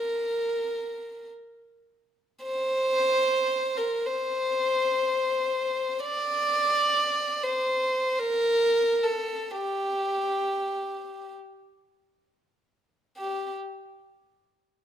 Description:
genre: Arabic maqam ensemble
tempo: free time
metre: none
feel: none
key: unclear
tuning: A4 = 440 Hz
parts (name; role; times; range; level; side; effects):
- warm violin; solo; 0.0-13.5 s; G4 to D5; -25 LUFS; equal; none
room: moderate recital hall reverb, RT60 1.5 s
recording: minimal, uncompressed stereo recording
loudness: -24 LUFS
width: side -9 dB against mid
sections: 0.0-13.2 A section; 13.2-14.8 B section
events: none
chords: none

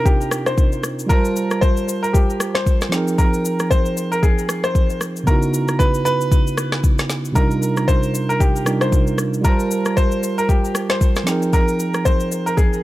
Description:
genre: amapiano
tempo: 115 BPM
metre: 4/4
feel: swing 58% on 16ths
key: C minor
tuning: A4 = 440 Hz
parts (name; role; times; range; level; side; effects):
- clear grand piano; melody; 0.0-12.8 s; G4 to C5; -22 LUFS; left 1 dB; digital delay
- bright tine electric piano; accompaniment; 0.0-12.8 s; C3 to A5; -21 LUFS; right 2 dB; none
- afro-pop drum kit; drums; 0.1-12.8 s; kick drum, rim click, shaker, snare drum; -18 LUFS; equal; none
room: little or no reverb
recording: dark, warm production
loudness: -16 LUFS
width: side -16 dB against mid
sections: 0.0-12.8 A section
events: none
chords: 0.0 Cm11; 1.1 Gm11; 2.9 Fm11; 5.3 Dbm11; 7.4 Cm11; 9.4 Gm11; 11.3 Fm11

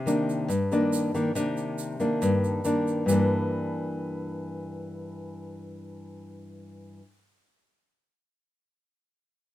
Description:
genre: bossa nova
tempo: 140 BPM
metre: 4/4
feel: straight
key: G minor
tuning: A4 = 441 Hz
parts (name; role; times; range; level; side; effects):
- nylon-string guitar; accompaniment; 0.0-7.0 s; G2 to D4; -26 LUFS; left 1 dB; none
- egg shaker; percussion; 0.1-3.2 s; none; -39 LUFS; right 7 dB; none
room: light reverb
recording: none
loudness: -24 LUFS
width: side -14 dB against mid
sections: 0.0-3.1 A section; 3.1-6.5 B section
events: none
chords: 0.0 Cm9; 3.1 Gm6

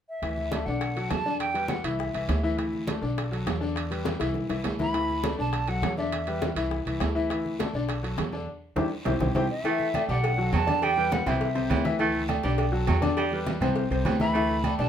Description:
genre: latin, salsa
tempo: 204 BPM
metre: 4/4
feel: straight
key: D major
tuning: A4 = 438 Hz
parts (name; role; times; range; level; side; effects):
- bright concert flute; melody; 0.1-2.4, 4.8-6.5, 9.5-11.9, 14.2-14.9 s; E5 to B5; -29 LUFS; right 1 dB; none
- bright grand piano; accompaniment; 0.2-14.9 s; C3 to E5; -30 LUFS; left 3 dB; none
- upright bass; bass; 0.2-14.9 s; B1 to E2; -30 LUFS; right 1 dB; none
- bongos and cowbell; percussion; 0.2-14.9 s; none; -36 LUFS; left 4 dB; none
- congas; percussion; 0.2-14.8 s; none; -34 LUFS; equal; none
- guiro; percussion; 0.2-14.9 s; none; -45 LUFS; equal; none
- timbales and agogo bells; percussion; 0.2-14.8 s; none; -34 LUFS; right 8 dB; none
- clear baritone saxophone; second line; 9.7-14.9 s; E3 to A3; -32 LUFS; right 5 dB; none
room: light reverb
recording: minimal, uncompressed stereo recording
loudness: -24 LUFS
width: side -9 dB against mid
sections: 0.2-9.6 A section; 9.6-14.9 B section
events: drum fill 4.1-4.9, 8.5-9.6; band accent 8.5-9.6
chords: 0.2 Dsus2; 0.8 Bm7; 1.4 Em7; 2.0 C; 2.6 Dsus2; 3.2 Bm7; 3.8 Em7; 4.4 C; 4.9 Dsus2; 5.5 Bm7; 6.1 Em7; 6.7 C; 7.3 Dsus2; 7.9 Bm7; 8.5 Em7; 9.1 C; 9.6 Dsus2; 10.2 Bm7; 10.8 Em7; 11.4 C; 12.0 Dsus2; 12.6 Bm7; 13.2 Em7; 13.8 C; 14.3 Dsus2

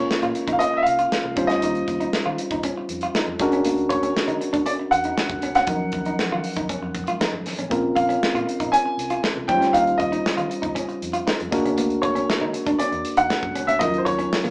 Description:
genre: polished 1980s jazz-funk pop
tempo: 118 BPM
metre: 4/4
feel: straight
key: Bb minor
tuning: A4 = 440 Hz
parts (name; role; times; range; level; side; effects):
- clear grand piano; melody; 0.0-14.5 s; C5 to Ab5; -22 LUFS; equal; none
- tine electric piano; accompaniment; 0.0-14.5 s; F3 to C5; -24 LUFS; equal; overdrive
- electric guitar at the edge of break-up; riff; 0.0-14.5 s; Bb3 to F4; -28 LUFS; equal; none
- vintage muted fingered electric bass; bass; 0.0-14.5 s; G1 to Eb3; -36 LUFS; equal; none
- modern studio drum kit; drums; 0.1-14.5 s; hi-hat, kick drum, snare drum; -27 LUFS; equal; none
room: wet studio reverb, RT60 0.5 s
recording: band playing live in one room, small speaker sound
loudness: -19 LUFS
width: side -25 dB against mid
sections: 0.0-14.5 A section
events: none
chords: 0.0 Bbm9; 1.4 Eb13; 3.4 Bb7alt; 5.7 Ebm9; 7.7 Bbm9; 9.5 Eb13; 11.5 Bb7alt; 13.8 Ebm9

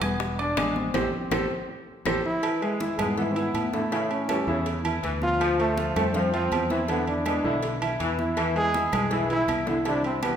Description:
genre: latin, salsa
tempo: 162 BPM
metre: 4/4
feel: straight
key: unclear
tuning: A4 = 440 Hz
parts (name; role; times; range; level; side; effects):
- warm trombone; melody; 0.0-10.4 s; G#3 to G#4; -28 LUFS; equal; none
- clear baby grand piano; accompaniment; 0.0-10.4 s; E3 to G#6; -30 LUFS; right 1 dB; none
- fingered electric bass; bass; 0.0-10.3 s; E1 to A2; -32 LUFS; equal; none
- claves; percussion; 0.0-2.1, 8.4-10.4 s; none; -37 LUFS; left 2 dB; none
- congas; percussion; 0.0-10.4 s; none; -35 LUFS; left 2 dB; none
- timbales and agogo bells; percussion; 0.0-10.4 s; none; -33 LUFS; right 6 dB; none
- bongos and cowbell; percussion; 0.2-10.4 s; none; -37 LUFS; left 3 dB; none
- bright trombone section; second line; 2.4-10.3 s; C3 to A3; -31 LUFS; left 3 dB; none
room: wet recital hall reverb, RT60 1.5 s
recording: recorded in a church or concert hall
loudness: -23 LUFS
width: side -8 dB against mid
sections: 0.0-2.4 A section; 2.4-10.4 B section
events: drum fill 0.9-2.4; band accent 0.9-2.4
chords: 0.2 E7; 0.9 Am7; 2.4 E; 3.9 A7; 5.4 Dm7; 6.9 E7; 9.9 Cmaj7

